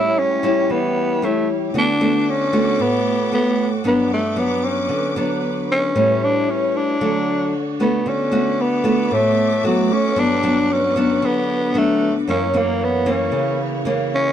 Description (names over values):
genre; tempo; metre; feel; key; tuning
bossa nova; 114 BPM; 4/4; straight; D major; A4 = 438 Hz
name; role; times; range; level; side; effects
growling tenor saxophone; melody; 0.0-14.3 s; F#3 to E4; -20 LUFS; equal; none
nylon-string guitar; accompaniment; 0.0-14.3 s; F#2 to F#4; -19 LUFS; equal; none
warm studio string section; sustained chords; 0.0-14.3 s; A3 to D6; -29 LUFS; right 1 dB; none
room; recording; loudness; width
light reverb; dark, warm production; -16 LUFS; side -9 dB against mid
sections
0.0-8.1 A section; 8.1-14.3 A section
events
none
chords
0.0 A7; 1.7 D6; 3.9 Gmaj7; 6.0 A7; 7.0 Dmaj7; 8.1 D6; 10.2 Gmaj7; 12.3 F#7